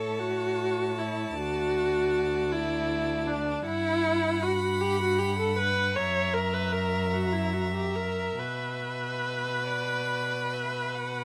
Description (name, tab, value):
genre	classical, slow romantic movement for string quartet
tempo	46-53 BPM (dotted quarters)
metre	12/8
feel	rubato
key	B minor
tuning	A4 = 440 Hz
part	rich violin	melody	0.0-11.2 s	A5 to B5	-40 LUFS	equal	none
part	rich violin	second line	0.0-11.2 s	C#5 to F#5	-39 LUFS	equal	none
part	warm viola	accompaniment	0.0-11.2 s	D4 to C#5	-30 LUFS	equal	none
part	rich cello	bass	0.0-11.2 s	D2 to B2	-35 LUFS	equal	none
room	light reverb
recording	none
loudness	-28 LUFS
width	mono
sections	0.0-11.2 A section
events	none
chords	0.0 A; 1.4 D; 3.6 Gmaj7; 6.0 F#7; 8.4 Bm